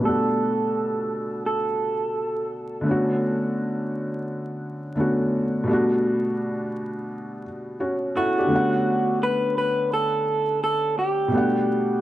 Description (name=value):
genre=hip hop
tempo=85 BPM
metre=4/4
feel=swing 64% on 16ths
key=B minor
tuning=A4 = 439 Hz
part: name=electric guitar through a small old amp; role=melody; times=0.0-2.5, 8.2-12.0 s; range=F#4 to B4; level=-23 LUFS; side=right 2 dB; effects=low-pass filter, tape echo
part: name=felt-muted upright piano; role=accompaniment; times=0.0-12.0 s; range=B2 to F#5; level=-24 LUFS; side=equal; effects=cassette tape, low-pass filter
room=wet spring reverb, RT60 2.4 s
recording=vinyl crackle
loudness=-21 LUFS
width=side -14 dB against mid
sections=0.0-8.5 A section; 8.5-12.0 B section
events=filter sweep 0.0-8.5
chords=0.0 Gmaj7/B; 2.9 Bm7; 5.7 Gmaj7/B; 8.5 Bm7; 11.3 Gmaj7/B